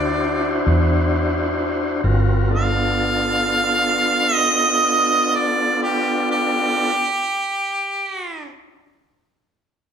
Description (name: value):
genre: slow blues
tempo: 42 BPM (dotted quarters)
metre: 12/8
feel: straight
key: G mixolydian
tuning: A4 = 443 Hz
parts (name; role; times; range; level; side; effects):
- warm harmonica; melody; 0.0-8.5 s; G4 to F5; -18 LUFS; right 2 dB; overdrive
- tonewheel organ; sustained chords; 0.0-6.9 s; B3 to C5; -21 LUFS; left 1 dB; slow rotary speaker, overdrive
- vintage muted fingered electric bass; bass; 0.0-6.5 s; G1 to E2; -20 LUFS; equal; none
room: wet large studio reverb, RT60 1.3 s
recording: band playing live in one room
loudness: -17 LUFS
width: side -7 dB against mid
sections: 0.0-2.0 A section; 2.0-7.7 B section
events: slowing down 0.0-2.0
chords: 0.0 D9; 2.0 G9